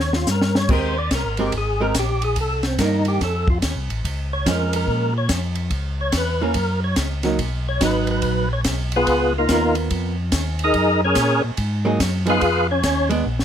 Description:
soul jazz organ trio; 143 BPM; 4/4; swing 64% on 8ths; A4 = 440 Hz
percussive tonewheel organ; melody; 0.0-13.1 s; Bb3 to F5; -21 LUFS; equal; slow rotary speaker, overdrive, chorus vibrato
mellow tonewheel organ; bass; 0.0-13.4 s; G1 to Bb2; -23 LUFS; equal; overdrive, chorus vibrato, slow rotary speaker
compact cocktail drum kit; drums; 0.0-13.4 s; crash cymbal, hi-hat, kick drum, ride cymbal, snare drum; -25 LUFS; equal
archtop guitar, miked and amplified; accompaniment; 0.7-13.2 s; Eb3 to Bb4; -24 LUFS; right 3 dB
light reverb; -18 LUFS; side -9 dB against mid
0.7-13.4 A section
drum fill 0.0-0.7, 13.3; tonewheel organ solo 0.0-13.4
0.0 Eb; 0.7 Abmaj9; 2.4 Cm9; 3.2 F7; 4.0 Bbm7; 5.7 Dbm; 6.6 Gb; 7.4 Bmaj7; 9.1 Db13; 10.7 Gb69; 12.4 Fm7b5
0.28 | 0.70 1.12 1.53 1.95 | 2.37 2.79 3.21 3.63 | 4.05 4.47 4.88 5.30 | 5.72 6.14 6.56 6.98 | 7.40 7.82 8.23 8.65 | 9.07 9.49 9.91 10.33 | 10.74 11.16 11.58 12.00 | 12.42 12.84 13.26

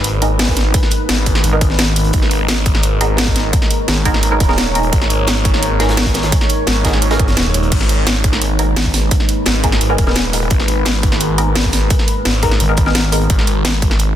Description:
dark technical drum and bass; 172 BPM; 4/4; straight; G# minor; A4 = 440 Hz
deep dark ambient pad; sustained chords; 0.0-14.2 s; G#3 to D#5; -22 LUFS; equal; chorus, built-in reverb, sidechain pumping
phased detuned saw bass; bass; 0.0-14.2 s; D#1 to G#1; -17 LUFS; equal; phaser, overdrive
crunchy breakbeat drum kit; drums; 0.0-14.1 s; hi-hat, snare drum; -27 LUFS; equal
drum and bass drum kit; drums; 0.0-14.1 s; crash cymbal, hi-hat, snare drum; -18 LUFS; equal; overdrive
filtered dub chord stab; stabs; 0.2-13.3 s; B3 to A#4; -22 LUFS; right 1 dB; phaser, lush chorus, dub echo
electronic kick drum; drums; 0.5-13.9 s; -17 LUFS; equal; overdrive
growling FM bass; bass; 1.4-2.1, 12.6-13.3 s; G#1; -16 LUFS; equal
light reverb; dense, heavily limited modern master; -12 LUFS; side -11 dB against mid
0.0-14.2 A section
0.0 G#madd9
0.04 0.39 | 0.74 1.09 1.44 1.79 | 2.14 2.49 2.83 3.18 | 3.53 3.88 4.23 4.58 | 4.93 5.28 5.62 5.97 | 6.32 6.67 7.02 7.37 | 7.72 8.07 8.42 8.77 | 9.11 9.46 9.81 10.16 | 10.51 10.86 11.21 11.55 | 11.90 12.25 12.60 12.95 | 13.30 13.65 14.00

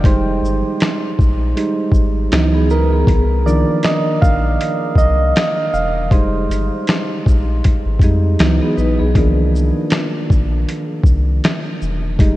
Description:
lo-fi hip hop; 79 BPM; 4/4; swing 58% on 16ths; A4 = 441 Hz
soft electric-piano-like synth keys; accompaniment; 0.0-12.4 s; Eb3 to F5; -18 LUFS; right 2 dB; chorus, cassette tape, low-pass filter
round analog bass; bass; 0.0-12.4 s; E1 to F2; -17 LUFS; equal
boom bap sampler-style drum kit; drums; 0.0-12.4 s; finger snaps, hi-hat, kick drum, shaker, snare drum; -17 LUFS; equal; vintage 12-bit sampler grit
vibraphone with medium hard mallets; second line; 2.5-3.3, 8.6-9.4 s; Cb4 to Cb5; -26 LUFS; left 1 dB; low-pass filter, tape echo
moderate cathedral reverb, RT60 5.7 s; dreamy mix soaked in reverb, cassette tape; -13 LUFS; side -16 dB against mid
0.0-12.4 A section
synth keys solo 0.0-12.4
0.0 Fm9; 2.3 Dbm11; 3.1 Cm11; 6.1 Fm9; 8.4 Dbm11; 9.2 Cm11
| 0.04 0.80 1.56 2.32 | 3.08 3.83 4.59 5.35 | 6.11 6.87 7.63 8.39 | 9.15 9.91 10.67 11.43 | 12.19

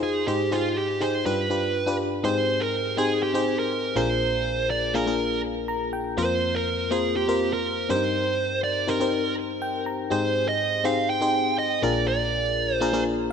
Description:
pop; 122 BPM; 4/4; straight; A4 = 437 Hz
dark smooth lead guitar; melody; 0.0-13.0 s; F4 to G5; -25 LUFS; right 4 dB; overdrive, digital delay
FM electric piano; accompaniment; 0.0-13.3 s; Bb1 to Bb5; -25 LUFS; left 3 dB; chorus
moderate lush hall reverb, RT60 2.0 s; -22 LUFS; side -7 dB against mid
0.0-2.2 A section; 2.2-13.3 B section
FM electric piano fill 5.4-6.2, 9.4-10.1, 13.1
0.3 Abmaj7; 1.3 G7; 2.2 Abmaj7; 4.0 Bb7; 6.2 Fsus4; 7.9 Cm7/G; 10.1 Abmaj7; 11.8 Bb7
| 0.27 0.76 1.25 1.75 | 2.24 2.73 3.22 3.71 | 4.21 4.70 5.19 5.68 | 6.17 6.67 7.16 7.65 | 8.14 8.63 9.12 9.62 | 10.11 10.60 11.09 11.58 | 12.07 12.57 13.06

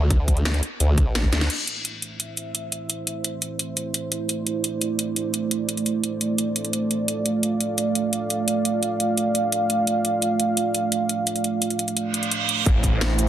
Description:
dark technical drum and bass; 172 BPM; 4/4; straight; A minor; A4 = 440 Hz
formant-sweep wobble bass; bass; 0.0-1.5 s; A1 to D2; -20 LUFS; equal; chorus
drum and bass drum kit; drums; 0.1-13.3 s; cabasa, crash cymbal, hi-hat, snare drum; -25 LUFS; equal
electronic kick drum; drums; 0.1-1.3, 12.7-12.9 s; -20 LUFS; equal
dark analog pad; sustained chords; 1.5-13.3 s; A3 to F5; -23 LUFS; right 2 dB; chorus, sidechain pumping
reverse cymbal and impact; sound effects; 12.1-13.3 s; -26 LUFS; right 5 dB
snarling distorted saw bass; bass; 12.7-13.3 s; A1; -22 LUFS; equal; distortion, overdrive
moderate plate reverb, RT60 2.0 s; dense, heavily limited modern master; -21 LUFS; side -11 dB against mid
0.0-1.5 A section; 1.5-12.7 B section
drum fill 1.3; reverse cymbal 12.1-12.7; impact 12.7-13.3
0.0 N.C.; 1.5 Am; 7.1 Dm; 12.7 Am
| 0.10 0.45 0.80 1.15 | 1.50 1.85 2.20 2.55 | 2.90 3.25 3.59 3.94 | 4.29 4.64 4.99 5.34 | 5.69 6.04 6.38 6.73 | 7.08 7.43 7.78 8.13 | 8.48 8.83 9.18 9.52 | 9.87 10.22 10.57 10.92 | 11.27 11.62 11.97 12.31 | 12.66 13.01

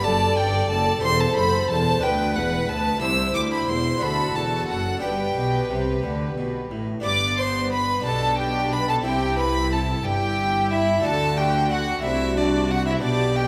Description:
classical, baroque-style concerto movement with solo episodes; 60 BPM (dotted quarters); 6/8; straight; G major; A4 = 441 Hz
rich chamber violin section; melody; 0.0-13.5 s; D5 to E6; -31 LUFS; equal
rich violin; melody; 0.0-13.5 s; D5 to E6; -28 LUFS; equal
rich chamber violin section; second line; 0.0-13.5 s; D4 to D5; -31 LUFS; equal
harpsichord; accompaniment; 0.0-13.5 s; C2 to D5; -33 LUFS; equal
rich studio viola section; accompaniment; 0.0-13.5 s; B3 to B4; -31 LUFS; equal
warm chamber cello section; bass; 0.0-13.5 s; C2 to D3; -31 LUFS; equal
warm chamber double bass section; bass; 0.0-13.5 s; E1 to D2; -31 LUFS; equal
wet concert hall reverb, RT60 2.2 s; -22 LUFS; mono
0.0-7.1 A section; 7.1-13.5 A section
0.0 D/F#; 1.0 C/E; 2.0 Bm; 3.0 C; 4.0 D7; 5.0 G; 8.1 G/B; 9.1 C; 11.1 D; 12.0 D7/C
0.04 | 1.03 2.03 | 3.02 4.02 | 5.03 6.04 | 7.05 8.06 | 9.06 10.05 | 11.05 12.05 | 13.04

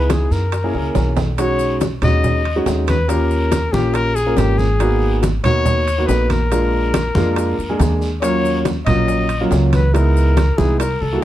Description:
Afro-Cuban jazz; 140 BPM; 4/4; straight; Eb minor; A4 = 439 Hz
breathy trumpet; melody; 0.0-11.2 s; G4 to Eb5; -21 LUFS; left 3 dB
warm concert grand piano; accompaniment; 0.0-11.2 s; Gb3 to Bb4; -20 LUFS; right 1 dB
upright bass; bass; 0.0-11.2 s; Ab1 to Gb2; -18 LUFS; equal
bongos; percussion; 0.1-11.2 s; -26 LUFS; left 6 dB
congas; percussion; 0.1-11.2 s; -23 LUFS; right 1 dB
guiro; percussion; 0.1-11.2 s; -37 LUFS; right 2 dB
maracas; percussion; 0.1-11.0 s; -39 LUFS; left 6 dB
timbales; percussion; 0.1-11.0 s; -28 LUFS; right 8 dB
light reverb; dark, warm production; -14 LUFS; side -13 dB against mid
0.0-1.4 A section; 1.4-11.2 B section
drum fill 1.0-1.4
0.0 Dbm7; 0.5 Gb7; 1.4 B6; 3.1 Eb7; 4.8 Abm7; 6.5 Bb7; 8.2 Ebm9; 9.9 Dbm7
0.10 0.53 0.95 | 1.38 1.81 2.24 2.67 | 3.09 3.52 3.95 4.38 | 4.80 5.23 5.66 6.09 | 6.51 6.94 7.37 7.80 | 8.23 8.66 9.08 9.51 | 9.94 10.37 10.80 11.22

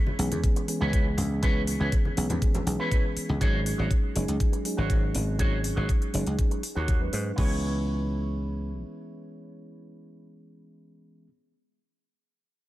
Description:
nu-disco, nu disco; 121 BPM; 4/4; straight; C# minor; A4 = 440 Hz
reed electric piano; accompaniment; 0.0-11.3 s; E3 to B4; -33 LUFS; equal; dub echo
electric guitar with an envelope filter; riff; 0.1-11.3 s; E4 to C#5; -36 LUFS; right 1 dB; analog chorus, low-pass filter, dub echo
congas; percussion; 0.1-3.4 s; -36 LUFS; left 1 dB; dub echo
dry thumbed slap bass; bass; 0.2-8.8 s; F#1 to G#2; -28 LUFS; equal
pop drum kit; drums; 0.2-7.5 s; crash cymbal, hi-hat; -37 LUFS; left 1 dB; studio reverb
electronic kick drum; drums; 0.4-7.5 s; -24 LUFS; equal; studio reverb
digital ambience; echo-heavy mix; -24 LUFS; side -16 dB against mid
0.0-7.4 A section; 7.4-11.3 B section
0.0 C#m7; 3.4 G#7sus4; 7.4 C#m7
0.43 0.93 | 1.43 1.92 2.42 2.91 | 3.41 3.90 4.40 4.90 | 5.39 5.89 6.38 6.88 | 7.38 7.87 8.37 8.86 | 9.36 9.86 10.35 10.85

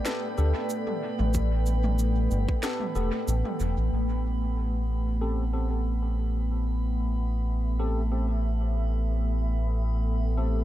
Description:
ambient dub; 93 BPM; 4/4; swing 54% on 16ths; A4 = 444 Hz
deep dark ambient pad; sustained chords; 0.0-10.6 s; A3 to G5; -33 LUFS; equal; chorus, built-in reverb
drifting glass-harmonics texture; texture; 0.0-10.6 s; B3 to B5; -38 LUFS; right 6 dB; chorus, built-in reverb
bright tine electric piano; stabs; 0.1-10.6 s; B3 to A4; -37 LUFS; left 2 dB; analog chorus, dub echo
organic electronic drum kit; drums; 0.1-3.7 s; cabasa, snare drum, toms; -36 LUFS; right 1 dB; low-pass filter on toms, low-pass filter on perc, low-pass filter on snare, low-pass filter on room, dub echo
round analog bass; bass; 0.4-10.6 s; E1 to D2; -26 LUFS; equal
electronic kick drum; drums; 1.3-2.6 s; -28 LUFS; equal
little or no reverb; echo-heavy mix; -25 LUFS; side -14 dB against mid
0.0-3.9 A section; 3.9-10.6 B section
break 2.6-3.9
0.0 Gadd9; 3.9 Am7
0.06 0.70 | 1.35 1.99 2.64 3.28 | 3.93 4.57 5.22 5.86 | 6.51 7.15 7.80 8.44 | 9.09 9.73 10.38

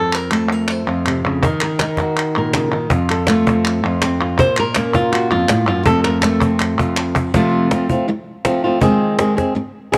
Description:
flamenco; 162 BPM; 4/4; straight; F phrygian dominant; A4 = 442 Hz
flamenco guitar; melody; 0.0-10.0 s; F2 to C5; -18 LUFS; equal
palmas hand claps; percussion; 0.1-7.3 s; -25 LUFS; equal
cajon; percussion; 1.4-10.0 s; -23 LUFS; equal
moderate echo chamber reverb, RT60 1.8 s, small room ambience; -17 LUFS; mono
0.0-7.3 A section; 7.3-10.0 B section
drum fill 6.6-7.3
0.0 F; 1.4 Ebm; 2.9 F; 4.4 Bbm; 5.9 F; 8.8 Ab/Eb
0.32 0.69 1.06 | 1.43 1.80 2.17 2.54 | 2.91 3.28 3.65 4.02 | 4.39 4.76 5.13 5.50 | 5.87 6.24 6.60 6.97 | 7.34 7.71 8.08 8.45 | 8.82 9.19 9.56 9.93

